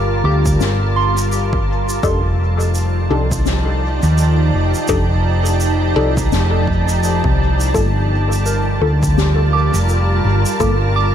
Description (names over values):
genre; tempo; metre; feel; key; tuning
ambient dub; 84 BPM; 4/4; swing 59% on 16ths; G minor; A4 = 440 Hz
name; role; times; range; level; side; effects
soft additive organ-like pad; sustained chords; 0.0-11.1 s; F3 to A5; -20 LUFS; right 1 dB; ensemble chorus, built-in reverb
soft synth bell; arpeggios; 0.0-3.1, 8.5-11.1 s; G4 to D6; -24 LUFS; right 3 dB; chorus, phaser, dub echo
hollow-body short-scale fingered electric bass; bass; 0.0-11.1 s; F1 to Eb2; -16 LUFS; equal; none
electronic kick drum; drums; 0.5-10.8 s; none; -22 LUFS; equal; overdrive
shaker and snare drum; drums; 0.5-10.8 s; none; -26 LUFS; left 4 dB; dub echo
filtered dub chord stab; stabs; 2.0-10.8 s; Bb3 to A4; -24 LUFS; left 3 dB; phaser, dub echo
room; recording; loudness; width
light reverb, small room ambience; none; -14 LUFS; side -9 dB against mid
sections
0.0-11.1 A section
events
none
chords
0.0 Gm9; 2.0 F13; 7.7 Gm9